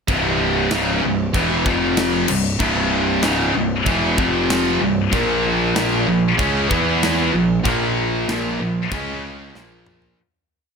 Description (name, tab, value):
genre	heavy metal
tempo	95 BPM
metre	4/4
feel	straight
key	C phrygian dominant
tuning	A4 = 440 Hz
part	high-gain distorted guitar	riff	0.1-10.2 s	C2 to E4	-18 LUFS	equal	distortion
part	fuzz picked electric bass	bass	0.1-10.1 s	C1 to E2	-25 LUFS	equal	overdrive
part	tight metal drum kit	drums	0.1-10.2 s	crash cymbal, kick drum, snare drum, toms	-25 LUFS	equal	none
room	small room ambience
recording	none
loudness	-16 LUFS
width	side -5 dB against mid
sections	0.1-10.2 riff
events	fade-out 7.7-10.2; drum fill 9.6-10.2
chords	0.1 C; 1.7 F5; 2.3 C; 4.2 F5; 4.8 C5; 5.1 Bb5; 6.7 E5; 7.3 Bb5; 8.9 Db5; 9.6 Bb5